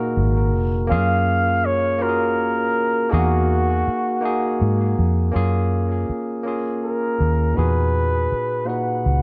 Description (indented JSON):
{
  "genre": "R&B",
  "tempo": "54 BPM (dotted quarters)",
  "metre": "6/8",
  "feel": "straight",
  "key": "F# major",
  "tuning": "A4 = 440 Hz",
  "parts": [
    { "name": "barky tine electric piano", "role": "accompaniment", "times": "0.0-9.2 s", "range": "A#2 to B4", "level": "-26 LUFS", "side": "equal", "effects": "analog delay" },
    { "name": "vintage muted fingered electric bass", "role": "bass", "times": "0.2-9.2 s", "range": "E#1 to G#2", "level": "-22 LUFS", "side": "equal", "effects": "none" },
    { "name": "breathy flugelhorn", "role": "melody", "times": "0.9-9.2 s", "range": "F#4 to F#5", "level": "-24 LUFS", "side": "equal", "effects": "none" }
  ],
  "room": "light reverb, small room ambience",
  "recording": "echo-heavy mix",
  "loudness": "-20 LUFS",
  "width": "mono",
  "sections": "0.0-5.3 A section; 5.3-9.2 B section",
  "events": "none",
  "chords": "0.0 Emaj9#11 (rootless); 0.9 F#maj9; 3.1 Emaj9#11; 5.3 F#maj9; 7.6 Emaj9#11",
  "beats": "| 0.89 2.00 | 3.11 4.22 | 5.33 6.45 | 7.56 8.67"
}